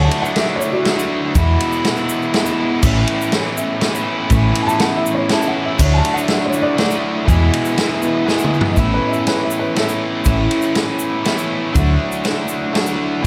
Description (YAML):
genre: folk rock and heartland rock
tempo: 121 BPM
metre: 3/4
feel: straight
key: A major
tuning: A4 = 439 Hz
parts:
  - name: dark upright piano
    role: second line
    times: 0.0-2.2, 4.6-10.0 s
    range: F#4 to A5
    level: -25 LUFS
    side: equal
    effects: none
  - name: picked steel-string acoustic guitar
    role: accompaniment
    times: 0.0-13.3 s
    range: E2 to E4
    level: -24 LUFS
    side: equal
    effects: none
  - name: biting overdriven guitar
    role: riff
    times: 0.0-13.3 s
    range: E2 to G#4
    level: -22 LUFS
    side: equal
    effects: none
  - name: hollow-body short-scale fingered electric bass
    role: bass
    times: 0.0-12.0 s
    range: A1 to E2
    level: -18 LUFS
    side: equal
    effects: none
  - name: vintage drum kit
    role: drums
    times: 0.1-13.3 s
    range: crash cymbal, kick drum, ride cymbal, snare drum, toms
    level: -23 LUFS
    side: equal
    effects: none
  - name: tube shaker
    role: percussion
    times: 0.3-13.0 s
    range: none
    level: -34 LUFS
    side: equal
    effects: none
room: moderate large studio reverb, RT60 1.4 s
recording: none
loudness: -17 LUFS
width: mono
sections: 0.0-8.8 A section; 8.8-13.3 B section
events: upright piano solo 0.0-8.8; drum fill 8.3-8.8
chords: 0.0 Dadd9; 1.4 E; 2.8 Aadd9; 5.8 Dadd9; 7.3 E; 8.8 Aadd9; 11.8 Dadd9